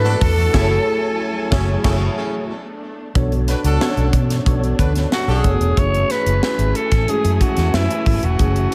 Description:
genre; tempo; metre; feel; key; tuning
polished 1980s jazz-funk pop; 92 BPM; 4/4; straight; B dorian; A4 = 443 Hz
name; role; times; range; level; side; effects
growling alto saxophone; melody; 0.0-8.7 s; E4 to C#5; -23 LUFS; equal; slapback echo, digital delay
clear horn section; second line; 0.0-5.5 s; C#4 to B4; -30 LUFS; equal; slapback echo, digital delay
mellow tine electric piano; accompaniment; 0.0-8.7 s; G#3 to C#5; -26 LUFS; equal; ensemble chorus, slapback echo
warm studio string section; sustained chords; 0.0-8.7 s; E3 to G#5; -32 LUFS; equal; none
vintage muted fingered electric bass; bass; 0.0-8.6 s; E1 to B2; -21 LUFS; equal; none
crisp fusion drum kit; drums; 0.2-8.7 s; crash cymbal, hi-hat, kick drum, snare drum; -23 LUFS; equal; none
room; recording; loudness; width
light reverb, small room ambience; none; -18 LUFS; mono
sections
0.0-3.2 A section; 3.2-5.8 B section; 5.8-8.7 C section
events
band accent 0.5-3.2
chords
0.0 E9sus4; 0.5 F#m9; 2.5 Bm7; 3.2 Bm9; 5.8 F#m7

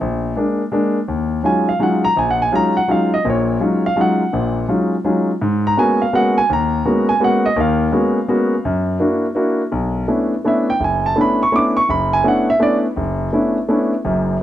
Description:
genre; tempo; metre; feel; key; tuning
jazz; 167 BPM; 3/4; swing 65% on 8ths; Eb minor, B dorian from 9.7 s; A4 = 440 Hz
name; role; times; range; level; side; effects
warm concert grand piano; solo; 0.0-14.4 s; F#1 to D6; -15 LUFS; equal; none
room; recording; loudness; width
light reverb; dry, close 1970s-style studio recording; -15 LUFS; side -12 dB against mid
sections
0.0-1.1 A section; 1.1-9.7 B section; 9.7-14.4 B section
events
none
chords
0.0 A#7; 1.1 Ebm11; 5.4 Abm11; 8.7 Gbaug7; 9.7 Bm11

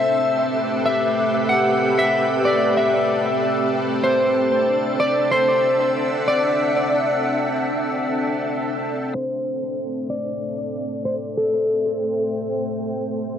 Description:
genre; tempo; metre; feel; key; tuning
ambient; 94 BPM; 4/4; swing 54% on 16ths; A dorian; A4 = 441 Hz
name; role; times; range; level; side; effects
electric slide guitar; melody; 0.0-12.3 s; A4 to F#5; -20 LUFS; left 1 dB; dub echo
soft additive organ-like pad; sustained chords; 0.0-13.4 s; A3 to G5; -22 LUFS; equal; ensemble chorus, built-in reverb
room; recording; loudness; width
moderate lush hall reverb, RT60 1.6 s; dark, warm production, vinyl crackle, low-pass filter; -18 LUFS; side -8 dB against mid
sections
0.0-9.2 A section; 9.2-13.4 B section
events
filter sweep on ambient pad 9.2-13.4; filter sweep 9.2-13.4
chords
0.0 Am7; 4.0 D7; 9.2 Am7

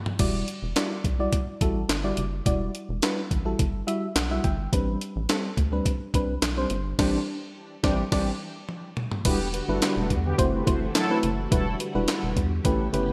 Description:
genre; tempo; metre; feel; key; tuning
early-eighties boogie funk; 106 BPM; 4/4; straight; E minor; A4 = 440 Hz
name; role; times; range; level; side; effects
string machine, full ensemble; sustained chords; 0.0-0.2, 9.3-13.1 s; C#3 to G4; -37 LUFS; equal; ensemble chorus
breakbeat sampler-style drum kit; drums; 0.1-13.1 s; crash cymbal, handclaps, hi-hat, kick drum, snare drum, toms; -29 LUFS; equal; gated reverb
mellow FM electric piano; accompaniment; 0.2-13.1 s; G3 to G5; -31 LUFS; equal; chorus
rubbery square bass; bass; 0.2-13.1 s; E1 to E2; -32 LUFS; equal; none
mellow synth brass; second line; 7.0-11.2 s; D3 to C5; -35 LUFS; equal; chorus, digital delay
room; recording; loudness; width
moderate lush hall reverb, RT60 1.9 s, digital ambience; bright 1980s-style digital production; -26 LUFS; mono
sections
0.2-9.3 A section; 9.3-13.1 B section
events
drum fill 0.0, 8.7-9.3; FM electric piano fill 0.0, 3.6-4.7; band accent 0.0, 7.0-9.3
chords
0.2 Em9; 4.7 Am11; 9.3 Em9; 10.4 F#m7b5; 11.5 Em9

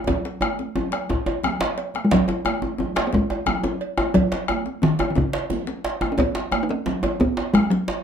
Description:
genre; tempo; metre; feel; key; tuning
west african traditional, West African drum ensemble; 118 BPM (dotted quarters); 12/8; straight; unclear; A4 = 440 Hz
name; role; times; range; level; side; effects
bombo; percussion; 0.1-7.7 s; none; -27 LUFS; left 3 dB; none
congas; percussion; 0.1-7.7 s; none; -31 LUFS; right 6 dB; none
cowbell; percussion; 0.1-8.0 s; none; -31 LUFS; right 9 dB; none
djembe; percussion; 0.1-8.0 s; none; -30 LUFS; left 4 dB; none
djembe; percussion; 0.1-8.0 s; none; -26 LUFS; equal; none
talking drum; melody; 2.0-8.0 s; C#3 to D#4; -20 LUFS; equal; plate reverb
room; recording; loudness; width
moderate small room reverb, RT60 0.6 s; none; -20 LUFS; side -8 dB against mid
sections
0.0-2.1 A section; 2.1-8.0 B section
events
drum fill 0.1-2.1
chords
none

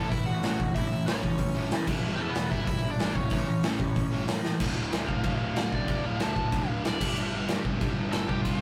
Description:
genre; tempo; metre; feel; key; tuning
punk rock; 187 BPM; 4/4; straight; unclear; A4 = 441 Hz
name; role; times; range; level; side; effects
overdriven electric guitar; melody; 0.0-8.6 s; A3 to A5; -37 LUFS; equal; none
distorted electric guitar; riff; 0.0-8.6 s; D2 to A3; -38 LUFS; equal; distortion
sludgy distorted guitar; riff; 0.0-8.6 s; D2 to A3; -38 LUFS; equal; none
fuzz picked electric bass; bass; 0.0-8.6 s; D1 to A2; -36 LUFS; equal; overdrive
big rock drum kit; drums; 0.1-8.5 s; crash cymbal, hi-hat, kick drum, snare drum; -31 LUFS; equal; none
room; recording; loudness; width
light reverb; rough rehearsal-room recording, warm saturation; -28 LUFS; mono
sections
0.0-4.6 A section; 4.6-8.6 B section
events
drum fill 4.4; overdriven electric guitar solo 4.6-8.6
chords
0.0 A; 1.9 Em/G; 3.3 A; 4.6 D5; 7.0 G5

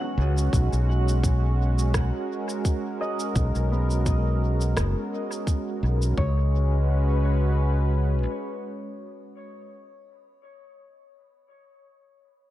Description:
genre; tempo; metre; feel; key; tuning
ambient dub; 85 BPM; 4/4; swing 55% on 16ths; unclear; A4 = 440 Hz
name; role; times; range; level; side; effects
warm analog pad; sustained chords; 0.0-9.8 s; G#3 to B4; -30 LUFS; right 1 dB; chorus, tremolo
Celtic harp; arpeggios; 0.0-10.5 s; B3 to F#5; -36 LUFS; left 3 dB; low-pass filter, dub echo
modern bright fingered electric bass; bass; 0.2-8.3 s; F#1 to C#2; -22 LUFS; equal; none
electronic shaker and rim click; drums; 0.4-6.1 s; none; -35 LUFS; right 1 dB; dub echo
electronic kick drum; drums; 0.5-6.3 s; none; -24 LUFS; equal; none
room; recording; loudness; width
little or no reverb; dark, warm production; -22 LUFS; side -14 dB against mid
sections
0.0-6.2 A section; 6.2-9.0 B section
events
filter sweep on harp 0.0-6.2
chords
0.0 C#7sus4; 0.5 Bmaj7; 6.2 C#7sus4

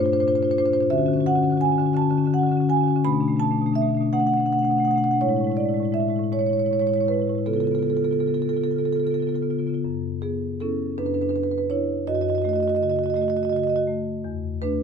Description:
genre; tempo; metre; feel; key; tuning
classical, contemporary piece for solo marimba; 50-57 BPM (dotted quarters); 6/8; rubato; F# minor; A4 = 439 Hz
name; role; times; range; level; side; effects
marimba with medium mallets; solo; 0.0-14.8 s; E2 to B5; -20 LUFS; equal; none
room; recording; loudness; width
moderate stone room reverb, RT60 1.1 s; minimal, uncompressed stereo recording; -20 LUFS; side -6 dB against mid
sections
0.0-9.8 A section; 9.8-14.8 B section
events
none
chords
0.0 Bbadd9; 0.9 Dmaj7; 3.0 Bm7; 5.2 Amaj7; 7.5 C#aug7; 9.8 F#7sus4; 11.0 D69/F#; 12.1 F#m6; 14.2 E7sus4

